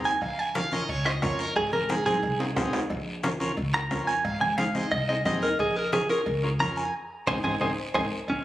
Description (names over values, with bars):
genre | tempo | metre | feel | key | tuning
latin, cumbia | 178 BPM | 4/4 | straight | unclear | A4 = 440 Hz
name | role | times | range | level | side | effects
direct-recorded clean electric guitar | melody | 0.0-8.4 s | Db4 to Bb5 | -26 LUFS | right 1 dB | spring reverb, plate reverb, analog delay
overdriven combo organ | accompaniment | 0.0-8.1 s | C4 to C5 | -32 LUFS | left 1 dB | none
upright bass | bass | 0.0-8.4 s | Ab1 to F2 | -33 LUFS | equal | none
guiro | percussion | 0.0-8.4 s | none | -41 LUFS | left 2 dB | none
bombo | percussion | 0.2-8.4 s | none | -38 LUFS | left 1 dB | none
congas | percussion | 0.2-8.4 s | none | -35 LUFS | left 1 dB | none
cowbell and timbales | percussion | 0.2-8.4 s | none | -36 LUFS | right 2 dB | none
room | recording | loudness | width
moderate studio reverb, RT60 0.7 s | recorded on a phone in the room, club ambience | -24 LUFS | side -14 dB against mid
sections
0.0-8.3 A section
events
clean electric guitar solo 0.0-8.3; drum fill 2.4-2.9, 7.4-8.3; band accent 6.9-8.3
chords
0.2 Bbm; 1.6 Ab; 2.9 Bbm; 4.2 Ab; 5.6 Bbm; 6.9 Ab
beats
| 0.22 0.55 0.89 1.22 | 1.56 1.90 2.23 2.57 | 2.90 3.24 3.58 3.91 | 4.25 4.59 4.92 5.26 | 5.59 5.93 6.27 6.60 | 6.94 7.28 7.61 7.95 | 8.28